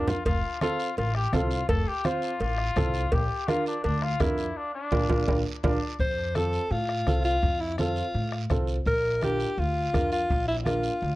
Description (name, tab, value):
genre	latin, cumbia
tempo	167 BPM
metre	4/4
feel	straight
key	F major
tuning	A4 = 440 Hz
part	warm trumpet	second line	0.0-6.0 s	D4 to A4	-31 LUFS	left 3 dB	tape echo
part	warm upright piano	accompaniment	0.0-10.9 s	C4 to C5	-30 LUFS	right 2 dB	plate reverb
part	upright bass	bass	0.0-11.2 s	F1 to A2	-29 LUFS	equal	none
part	congas	percussion	0.1-11.2 s	none	-33 LUFS	right 1 dB	none
part	guiro	percussion	0.1-11.2 s	none	-45 LUFS	right 6 dB	none
part	bombo	percussion	0.3-10.8 s	none	-30 LUFS	equal	none
part	cowbell and timbales	percussion	0.3-5.7 s	none	-32 LUFS	right 2 dB	none
part	bright alto saxophone	melody	6.0-11.2 s	E4 to C5	-27 LUFS	left 1 dB	plate reverb
room	moderate small room ambience, RT60 0.5 s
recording	cassette tape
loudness	-24 LUFS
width	side -18 dB against mid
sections	0.0-6.0 A section; 6.0-11.2 B section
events	drum fill 0.0, 5.1-6.0; band accent 4.6-6.0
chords	0.3 F; 3.1 Bb; 6.0 F; 8.9 Bb